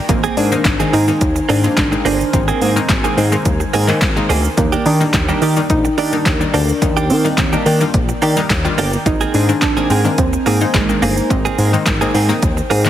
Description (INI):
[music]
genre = dance-pop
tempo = 107 BPM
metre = 4/4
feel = straight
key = unclear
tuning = A4 = 440 Hz
[part]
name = chorused pulse-width pad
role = sustained chords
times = 0.0-12.9 s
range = Eb3 to Ab5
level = -26 LUFS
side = left 1 dB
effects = sidechain pumping
[part]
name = soft round pluck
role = melody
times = 0.1-12.9 s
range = Ab3 to Eb4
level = -20 LUFS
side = right 2 dB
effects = chorus
[part]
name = punchy chord stab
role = accompaniment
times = 0.1-12.9 s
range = Eb3 to F4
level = -22 LUFS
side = left 4 dB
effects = chorus, sidechain pumping
[part]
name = direct-recorded clean electric guitar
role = riff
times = 0.1-12.9 s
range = Bb3 to Ab4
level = -22 LUFS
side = right 5 dB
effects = analog chorus
[part]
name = chorused synth bass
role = bass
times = 0.1-12.9 s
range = G1 to Eb3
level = -17 LUFS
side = equal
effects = sidechain pumping
[part]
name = deep house drum kit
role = drums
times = 0.1-12.9 s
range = handclaps, hi-hat, kick drum, shaker, snare drum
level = -18 LUFS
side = equal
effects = none
[sound]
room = light reverb, digital ambience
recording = heavily compressed radio sound, multiband compression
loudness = -13 LUFS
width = side -11 dB against mid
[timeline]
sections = 0.0-12.9 A section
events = none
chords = 0.1 Abadd9; 4.6 Ebmaj7; 9.1 Abadd9